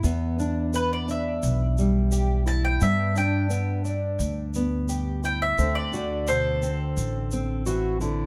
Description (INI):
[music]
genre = acoustic folk duo or small band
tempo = 87 BPM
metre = 4/4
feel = straight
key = G major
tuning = A4 = 440 Hz
[part]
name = nylon-string guitar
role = accompaniment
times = 0.0-8.3 s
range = E2 to F#4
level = -31 LUFS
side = equal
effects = none
[part]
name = fingerpicked twelve-string acoustic guitar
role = arpeggios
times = 0.0-8.3 s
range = B2 to G4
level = -34 LUFS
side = equal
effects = none
[part]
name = upright bass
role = bass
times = 0.0-8.3 s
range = A1 to G2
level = -29 LUFS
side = equal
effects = none
[part]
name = tube shaker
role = percussion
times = 0.0-8.2 s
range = none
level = -42 LUFS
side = equal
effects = none
[part]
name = bowl-back mandolin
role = melody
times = 0.8-7.6 s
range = A4 to A5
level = -30 LUFS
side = equal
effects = tape echo
[sound]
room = light reverb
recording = none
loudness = -25 LUFS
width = mono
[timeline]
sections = 0.0-8.3 A section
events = mandolin solo 0.0-8.3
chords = 0.0 Em7; 2.8 G; 5.6 D7